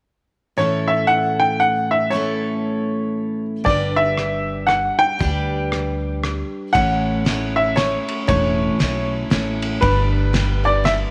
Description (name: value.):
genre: honky-tonk and classic country.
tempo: 117 BPM.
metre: 3/4.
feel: swing 61% on 8ths.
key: A mixolydian.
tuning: A4 = 440 Hz.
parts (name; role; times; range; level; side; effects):
clear upright piano; melody; 0.6-10.9 s; B4 to G5; -22 LUFS; equal; none.
picked steel-string acoustic guitar; accompaniment; 0.6-11.1 s; A2 to C#5; -26 LUFS; equal; none.
upright bass; bass; 3.7-11.0 s; E1 to D2; -26 LUFS; equal; none.
cloth-damped thuddy drum kit; drums; 3.7-11.0 s; kick drum, ride cymbal, rim click, snare drum; -26 LUFS; equal; none.
room: moderate plate reverb, RT60 2.0 s.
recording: none.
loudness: -20 LUFS.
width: mono.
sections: 0.6-6.7 A section; 6.7-11.1 B section.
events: none.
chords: 0.6 A; 3.7 G; 6.7 A; 9.8 G.